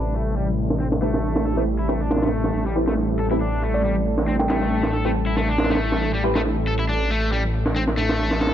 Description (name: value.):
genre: breakbeat, breaks.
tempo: 138 BPM.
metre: 4/4.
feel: swing 54% on 16ths.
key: A minor.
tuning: A4 = 440 Hz.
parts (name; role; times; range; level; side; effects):
phased analog pad; sustained chords; 0.0-8.5 s; C3 to A4; -28 LUFS; left 1 dB; phaser, chorus.
cranked stack guitar; riff; 0.0-8.5 s; G3 to A4; -27 LUFS; left 2 dB; overdrive, low-pass filter, dub echo.
band-passed chord stab; stabs; 0.0-6.8 s; C4 to B4; -29 LUFS; equal; phaser, lush chorus, dub echo.
detuned saw bass; bass; 0.0-8.5 s; A1; -24 LUFS; equal; tube saturation.
breakbeat sampler-style drum kit; drums; 0.1-8.5 s; hi-hat, snare drum; -24 LUFS; right 1 dB; low-pass filter on hats, small room ambience, low-pass filter on snare.
kalimba; melody; 3.7-4.6 s; D5 to G5; -30 LUFS; right 2 dB; old record sound, dub echo.
room: light reverb, digital ambience.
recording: low-pass filter, nothing above 7.9 kHz.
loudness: -19 LUFS.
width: side -10 dB against mid.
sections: 0.0-8.5 A section.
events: filter sweep on overdriven electric guitar 0.0-8.5; filter sweep 0.0-8.5.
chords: 0.0 Am7.